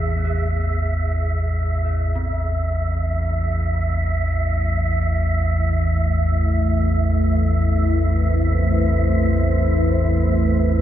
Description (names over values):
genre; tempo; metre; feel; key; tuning
dark ambient drone; free time; none; none; A harmonic minor; A4 = 439 Hz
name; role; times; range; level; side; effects
dark detuned synth bell; arpeggios; 0.0-10.8 s; B3 to G#4; -38 LUFS; right 2 dB; chorus, tape echo
deep rumbling drone; drone; 0.0-10.8 s; A1 to E2; -18 LUFS; equal; built-in reverb, wide subtle chorus
wind-like tuned noise texture; texture; 0.0-10.8 s; E5; -27 LUFS; right 2 dB; built-in reverb
deep dark ambient pad; sustained chords; 4.0-10.8 s; A3 to C5; -25 LUFS; equal; chorus, built-in reverb
room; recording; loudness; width
light reverb; none; -17 LUFS; side -11 dB against mid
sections
0.0-2.2 A section; 2.2-10.8 B section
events
fade-in on synth bell 2.2-10.8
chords
0.0 E/A; 2.2 Am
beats
free time